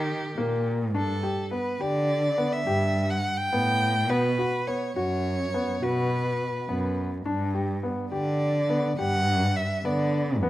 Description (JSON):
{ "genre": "contemporary instrumental, chamber music in an uneven meter", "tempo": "209 BPM (eighths)", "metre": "11/8", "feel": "straight", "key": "unclear", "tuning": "A4 = 439 Hz", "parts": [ { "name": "rich violin", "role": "melody", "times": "0.0-10.3 s", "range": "G4 to G5", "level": "-28 LUFS", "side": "equal", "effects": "none" }, { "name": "dark cello", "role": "bass", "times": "0.0-10.5 s", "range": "E2 to D#3", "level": "-28 LUFS", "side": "equal", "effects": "none" }, { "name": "warm baby grand piano", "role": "arpeggios", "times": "0.4-10.5 s", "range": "A#3 to G4", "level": "-30 LUFS", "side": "left 1 dB", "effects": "none" } ], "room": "moderate recital hall reverb, RT60 1.4 s", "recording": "none", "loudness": "-24 LUFS", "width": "side -15 dB against mid", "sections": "0.0-7.3 A section; 7.3-10.5 B section", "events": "none", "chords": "0.0 D#; 0.9 Gadd9; 4.1 B5; 7.3 G" }